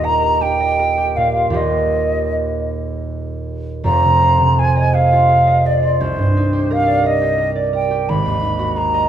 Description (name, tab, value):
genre	classical, impressionist duo for flute and harp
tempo	50-59 BPM (dotted quarters)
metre	6/8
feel	rubato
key	F dorian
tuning	A4 = 440 Hz
part	mellow hollow silver concert flute	melody	0.0-9.1 s	C5 to Cb6	-16 LUFS	equal	none
part	concert harp	accompaniment	0.0-9.1 s	Eb1 to G5	-17 LUFS	right 2 dB	none
room	moderate recital hall reverb, RT60 1.7 s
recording	none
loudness	-14 LUFS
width	side -10 dB against mid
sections	0.0-3.8 A section; 3.8-9.1 B section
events	none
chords	0.0 Ebadd9; 3.8 Fm7; 6.0 Cm9; 8.1 Abm7